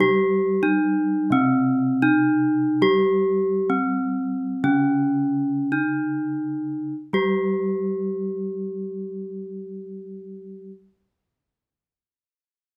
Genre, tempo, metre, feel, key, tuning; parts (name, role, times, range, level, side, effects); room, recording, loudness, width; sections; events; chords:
gamelan; 46-99 BPM; 4/4; straight; A4 = 440 Hz
gamelan-type bronze metallophone; melody; 0.0-10.7 s; C4 to G4-30c; -23 LUFS; equal
gamelan-type bronze metallophone; accompaniment; 0.0-10.7 s; C3 to G3-30c; -32 LUFS; equal
wet studio reverb, RT60 0.6 s; rough home demo mix; -22 LUFS; mono
0.0-6.9 A section; 6.9-12.1 B section
slowing down 0.0-6.9